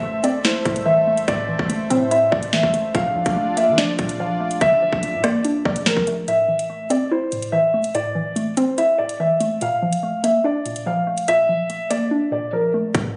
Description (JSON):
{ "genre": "hip hop, drill", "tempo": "144 BPM", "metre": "4/4", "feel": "half-time", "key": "A phrygian", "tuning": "A4 = 441 Hz", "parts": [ { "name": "dark concert grand piano", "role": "melody", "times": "0.0-12.7 s", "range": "Bb4 to F5", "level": "-22 LUFS", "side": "equal", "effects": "low-pass filter" }, { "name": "hollow square pluck", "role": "accompaniment", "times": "0.0-13.2 s", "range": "A2 to E4", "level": "-26 LUFS", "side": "equal", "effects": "chorus, low-pass filter" }, { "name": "warm analog pad", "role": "sustained chords", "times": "0.0-6.2 s", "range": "A3 to E5", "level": "-32 LUFS", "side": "equal", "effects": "chorus" }, { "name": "long sustained 808-style bass", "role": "bass", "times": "0.0-6.3, 12.9-13.1 s", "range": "A1 to F3", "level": "-34 LUFS", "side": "equal", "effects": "none" }, { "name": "drill drum kit", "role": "drums", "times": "0.2-13.0 s", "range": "hi-hat, kick drum, rim click, snare drum", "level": "-25 LUFS", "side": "equal", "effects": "overdrive" } ], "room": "light reverb", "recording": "recorded on a phone in the room, studio reverb, nothing above 10.4 kHz", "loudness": "-20 LUFS", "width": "mono", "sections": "0.0-6.3 A section; 6.3-12.9 B section", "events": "drums muted 12.1-12.9", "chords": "0.0 Am; 2.9 Bbmaj7; 6.3 Am; 9.6 Bbmaj7", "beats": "0.03 0.45 0.86 | 1.28 1.70 2.11 2.53 | 2.95 3.36 3.78 4.20 | 4.61 5.03 5.45 5.86 | 6.28 6.70 7.11 7.53 | 7.95 8.36 8.78 9.20 | 9.61 10.03 10.45 10.86 | 11.28 11.70 12.11 12.53 | 12.95" }